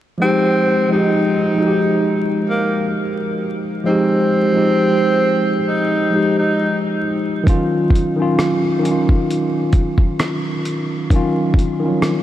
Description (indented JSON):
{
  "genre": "lo-fi hip hop",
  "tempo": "66 BPM",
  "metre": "4/4",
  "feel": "swing 56% on 16ths",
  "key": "unclear",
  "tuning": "A4 = 440 Hz",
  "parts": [
    { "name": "breathy tenor saxophone", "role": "melody", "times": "0.2-6.8 s", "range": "Bb3 to Eb4", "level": "-20 LUFS", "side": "right 1 dB", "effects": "low-pass filter" },
    { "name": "tine electric piano", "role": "accompaniment", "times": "0.2-12.2 s", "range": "Eb3 to G4", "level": "-17 LUFS", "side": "equal", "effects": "slow stereo tremolo, low-pass filter" },
    { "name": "dusty soul sampler-style drum kit", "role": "drums", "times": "7.5-12.2 s", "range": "hi-hat, kick drum, rim click", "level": "-17 LUFS", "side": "equal", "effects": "none" }
  ],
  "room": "wet huge ambient reverb, RT60 7.4 s",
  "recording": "dreamy mix soaked in reverb, vinyl crackle",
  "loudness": "-14 LUFS",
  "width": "side -12 dB against mid",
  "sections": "0.2-12.2 A section",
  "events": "tine electric piano fill 12.0",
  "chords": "0.2 Fm9; 7.5 Ebm9",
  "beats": "| 0.20 1.11 2.02 2.92 | 3.83 4.74 5.65 6.56 | 7.47 8.38 9.29 10.20 | 11.11 12.02"
}